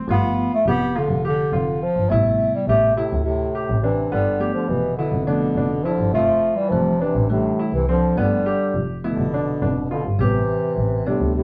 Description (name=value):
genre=progressive instrumental, progressive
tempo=207 BPM (eighths)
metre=7/8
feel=straight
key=G mixolydian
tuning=A4 = 438 Hz
part: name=bell-like tine electric piano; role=accompaniment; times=0.0-11.4 s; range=C3 to B3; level=-28 LUFS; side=equal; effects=none
part: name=bright baby grand piano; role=arpeggios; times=0.0-11.4 s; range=B3 to G4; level=-30 LUFS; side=equal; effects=none
part: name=mellow bass clarinet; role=melody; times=0.1-11.4 s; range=C3 to B3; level=-23 LUFS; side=equal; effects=none
part: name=muted double bass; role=bass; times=0.1-11.4 s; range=F1 to D2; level=-26 LUFS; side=equal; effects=none
part: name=bright trombone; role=second line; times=3.0-11.4 s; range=A2 to F3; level=-31 LUFS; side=equal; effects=none
room=moderate studio reverb, RT60 0.8 s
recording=band playing live in one room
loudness=-20 LUFS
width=mono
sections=0.0-4.1 A section; 4.1-11.4 B section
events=none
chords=0.1 G7; 2.1 Am7; 4.1 G7; 6.1 Fmaj7; 8.2 G7; 10.2 Am7